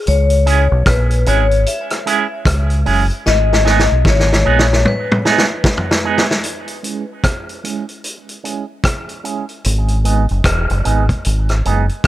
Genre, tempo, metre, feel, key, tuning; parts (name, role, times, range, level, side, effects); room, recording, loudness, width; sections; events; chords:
dub reggae; 75 BPM; 4/4; swing 62% on 16ths; C# dorian; A4 = 443 Hz
vibraphone with hard mallets; melody; 0.1-6.0 s; B4 to E5; -20 LUFS; left 5 dB; tape echo
deep dub fingered electric bass; bass; 0.1-4.8, 9.7-11.9 s; E1 to C#2; -14 LUFS; equal
vintage drum kit; drums; 0.1-12.1 s; hi-hat, kick drum, rim click, snare drum, toms; -17 LUFS; equal
electric guitar with an envelope filter; accompaniment; 0.5-11.9 s; G#3 to G#4; -20 LUFS; right 7 dB; tremolo, low-pass filter, tape echo
light reverb, studio ambience; -13 LUFS; side -14 dB against mid
0.0-6.4 A section; 6.4-12.1 B section
drum fill 3.2-6.4; break 6.4-9.6
0.1 C#m; 3.2 G#m; 6.4 C#m; 9.6 G#m